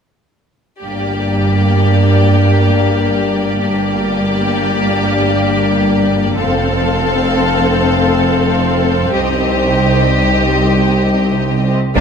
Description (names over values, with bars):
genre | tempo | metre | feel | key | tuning
cinematic, epic orchestral film score | free time | none | none | G minor | A4 = 440 Hz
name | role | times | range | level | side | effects
rich symphonic violin section | melody | 0.8-12.0 s | D5 to F5 | -23 LUFS | left 5 dB | none
rich symphonic violin section | second line | 0.8-12.0 s | D4 to A4 | -18 LUFS | left 2 dB | none
rich symphonic viola section | accompaniment | 0.8-12.0 s | Bb3 to C4 | -20 LUFS | right 1 dB | none
mellow French horn section | sustained chords | 0.8-12.0 s | G3 to Eb4 | -19 LUFS | left 6 dB | none
rich studio double bass section | bass | 0.8-12.0 s | F1 to C2 | -18 LUFS | right 3 dB | none
warm symphonic cello section | bass | 0.8-12.0 s | C2 to G2 | -18 LUFS | right 1 dB | none
taiko ensemble | drums | 12.0 s | none | -15 LUFS | equal | none
room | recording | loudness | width
wet scoring stage reverb, RT60 1.6 s | none | -11 LUFS | side -6 dB against mid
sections
0.8-12.0 A section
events
none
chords
0.8 Gm; 6.4 F; 9.1 Cm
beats
free time